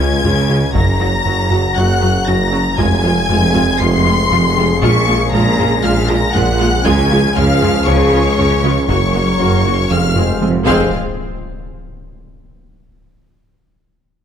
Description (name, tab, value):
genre	cinematic, hybrid orchestral and electronic film score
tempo	118 BPM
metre	4/4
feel	straight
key	F phrygian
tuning	A4 = 440 Hz
part	warm symphonic violin section	melody	0.0-10.9 s	Db6 to Db7	-20 LUFS	left 4 dB	none
part	warm symphonic violin section	second line	0.0-10.9 s	Db5 to Db6	-21 LUFS	left 2 dB	none
part	warm symphonic viola section	accompaniment	0.0-11.0 s	Gb3 to Ab4	-21 LUFS	right 1 dB	none
part	hollow soft pad	sustained chords	0.0-11.0 s	F3 to Db5	-25 LUFS	equal	none
part	mellow French horn section	sustained chords	0.0-10.9 s	F3 to C5	-23 LUFS	left 4 dB	none
part	soft round pluck	arpeggios	0.0-10.6 s	Db3 to Ab4	-27 LUFS	right 3 dB	none
part	rubbery square bass	riff	0.0-10.6 s	Db2 to Bb3	-21 LUFS	right 1 dB	none
part	rich symphonic cello section	bass	0.0-11.0 s	F2 to Db3	-21 LUFS	right 2 dB	none
part	warm symphonic double bass section	bass	0.0-11.0 s	F1 to Db2	-21 LUFS	right 2 dB	none
part	warm tuba	bass	0.0-10.9 s	F1 to Db2	-22 LUFS	right 4 dB	none
part	wide detuned saw bass	bass	0.0-10.9 s	F1 to Db2	-24 LUFS	left 1 dB	chorus
part	taiko ensemble	drums	0.2-11.6 s	none	-24 LUFS	left 1 dB	none
part	impact	sound effects	10.7-12.7 s	none	-28 LUFS	left 1 dB	none
room	moderate scoring stage reverb, RT60 1.9 s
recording	none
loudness	-11 LUFS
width	side -8 dB against mid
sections	0.0-10.9 A section; 10.9-13.0 B section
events	drum fill 10.2-10.9; impact 10.9-13.0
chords	0.0 Db; 0.8 Gb; 2.8 Fm; 4.8 Bbm7; 6.9 Db; 8.9 Gb; 9.9 Fm; 10.9 N.C.